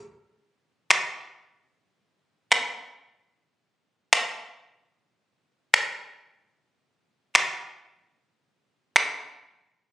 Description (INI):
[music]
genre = hip hop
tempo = free time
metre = none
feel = none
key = none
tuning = none
[part]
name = electronic finger snaps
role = drums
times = 0.9-9.0 s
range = none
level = -19 LUFS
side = equal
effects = overdrive, vintage 12-bit sampler grit
[sound]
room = wet digital room reverb, RT60 0.9 s, digital ambience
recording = recorded on a phone in the room, club reverb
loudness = -21 LUFS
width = side -17 dB against mid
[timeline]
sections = 0.1-9.9 A section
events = none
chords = none